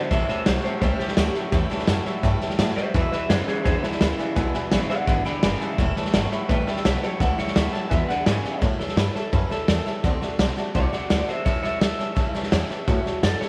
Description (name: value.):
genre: rockabilly.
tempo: 169 BPM.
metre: 4/4.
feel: straight.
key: A mixolydian.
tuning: A4 = 441 Hz.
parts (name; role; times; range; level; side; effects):
electric guitar through a small old amp; melody; 0.0-13.5 s; E4 to B5; -31 LUFS; equal; subtle chorus, tape echo.
picked swing-style acoustic guitar; accompaniment; 0.0-13.5 s; E2 to F#4; -36 LUFS; equal; none.
warm upright piano; accompaniment; 0.0-13.5 s; B4 to B5; -36 LUFS; equal; none.
twangy electric guitar; riff; 0.0-8.6 s; E2 to G3; -33 LUFS; equal; none.
upright bass; bass; 0.1-13.4 s; E1 to A2; -29 LUFS; equal; none.
raw garage drum kit; drums; 0.1-13.5 s; hi-hat, kick drum, snare drum; -26 LUFS; equal; none.
room: light reverb, studio ambience.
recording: none.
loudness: -23 LUFS.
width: mono.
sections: 0.0-8.6 A section; 8.6-13.5 B section.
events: clean electric guitar solo 0.0-8.6.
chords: 0.1 A7; 2.9 E7; 5.8 A7; 7.9 E7; 8.6 A7; 10.0 D7; 11.5 A7.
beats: | 0.11 0.46 0.82 1.17 | 1.53 1.88 2.24 2.59 | 2.95 3.30 3.66 4.01 | 4.37 4.72 5.08 5.43 | 5.79 6.14 6.50 6.85 | 7.21 7.56 7.92 8.27 | 8.62 8.98 9.33 9.69 | 10.04 10.40 10.75 11.11 | 11.46 11.82 12.17 12.53 | 12.88 13.23.